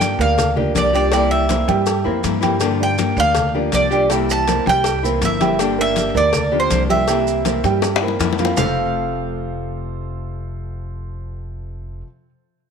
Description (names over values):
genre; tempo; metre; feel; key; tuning
latin, Cuban son and guajira; 161 BPM; 4/4; straight; F major; A4 = 440 Hz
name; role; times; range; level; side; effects
Cuban tres; melody; 0.0-12.0 s; C5 to A5; -20 LUFS; right 2 dB; tape echo
nylon-string guitar; accompaniment; 0.0-12.1 s; F2 to G4; -24 LUFS; left 11 dB; none
dark baby grand piano; arpeggios; 0.0-12.0 s; F3 to G5; -22 LUFS; right 8 dB; none
upright bass; bass; 0.0-12.0 s; F1 to G2; -24 LUFS; right 1 dB; none
congas; percussion; 0.0-8.7 s; none; -26 LUFS; left 8 dB; none
cowbell and bongos; percussion; 0.0-8.7 s; none; -25 LUFS; left 10 dB; none
maracas; percussion; 0.0-8.7 s; none; -31 LUFS; right 13 dB; none
room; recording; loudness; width
moderate echo chamber reverb, RT60 1.4 s, studio reverb; 1960s-style stereo with parts hard left and right; -15 LUFS; side -6 dB against mid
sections
0.0-8.6 A section; 8.6-11.6 B section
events
drum fill 7.8-8.6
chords
0.0 Gm7; 1.1 C7; 2.6 Gm7; 4.1 C7; 5.6 Gm7; 7.1 C7; 8.6 F